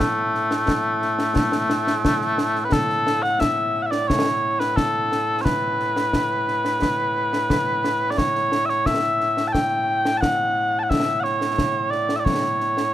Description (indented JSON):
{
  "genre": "scottish traditional, Scottish pipe music",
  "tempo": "88 BPM",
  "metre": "4/4",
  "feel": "straight",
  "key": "A mixolydian",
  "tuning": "A4 = 439 Hz",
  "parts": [
    { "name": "mellow small bagpipes", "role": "melody", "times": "0.0-12.9 s", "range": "A2 to A5", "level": "-20 LUFS", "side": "equal", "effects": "none" },
    { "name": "concert snare drum and concert bass drum", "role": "drums", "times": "0.0-12.9 s", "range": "none", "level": "-25 LUFS", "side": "left 1 dB", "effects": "none" }
  ],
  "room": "light reverb",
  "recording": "minimal, uncompressed stereo recording",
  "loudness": "-19 LUFS",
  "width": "side -12 dB against mid",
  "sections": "0.0-2.7 A section; 2.7-12.9 B section",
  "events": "none",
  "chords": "none"
}